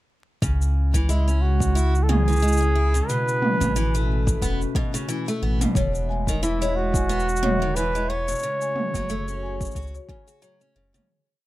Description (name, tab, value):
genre	folktronica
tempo	90 BPM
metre	4/4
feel	swing 56% on 16ths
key	C# minor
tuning	A4 = 440 Hz
part	warbly tape-like pad	sustained chords	0.4-11.1 s	B2 to E5	-31 LUFS	right 1 dB	chorus, built-in reverb, phaser, tremolo
part	picked steel-string acoustic guitar	arpeggios	0.4-11.1 s	B2 to F#4	-30 LUFS	equal	none
part	warm sub bass	bass	0.4-11.0 s	E1 to C#2	-23 LUFS	equal	none
part	electronic cabasa and toms	drums	0.4-11.1 s	none	-28 LUFS	right 1 dB	none
part	electronic kick drum	drums	0.4-10.2 s	none	-26 LUFS	equal	none
part	mellow flugelhorn	melody	1.1-10.4 s	E4 to C#5	-26 LUFS	right 1 dB	ping-pong delay
part	marimba with soft mallets	second line	5.8-11.1 s	G#4 to G#5	-32 LUFS	left 2 dB	digital delay
room	light reverb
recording	vinyl crackle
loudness	-20 LUFS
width	side -16 dB against mid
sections	0.4-11.1 groove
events	fade-out 7.5-11.1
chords	0.4 C#m; 3.1 Aadd9; 5.8 E; 8.4 F#m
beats	| 0.42 1.09 1.76 2.42 | 3.09 3.76 4.42 5.09 | 5.76 6.42 7.09 7.76 | 8.42 9.09 9.76 10.42